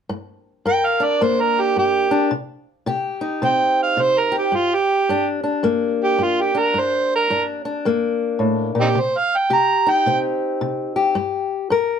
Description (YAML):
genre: acoustic country blues, solo or duo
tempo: 108 BPM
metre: 4/4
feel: swing 62% on 8ths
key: G minor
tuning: A4 = 440 Hz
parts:
  - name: fingerpicked old ladder-braced acoustic guitar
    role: accompaniment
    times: 0.1-12.0 s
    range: G2 to Bb4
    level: -20 LUFS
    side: left 4 dB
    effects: none
  - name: overdriven harmonica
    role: melody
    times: 0.7-10.2 s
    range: C4 to Bb5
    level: -17 LUFS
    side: right 4 dB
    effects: none
room: light reverb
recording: none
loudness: -17 LUFS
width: side -7 dB against mid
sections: 0.1-12.0 A section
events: none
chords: 0.1 Gm; 2.3 Cm; 4.5 Gm; 9.0 Cm; 11.2 Gm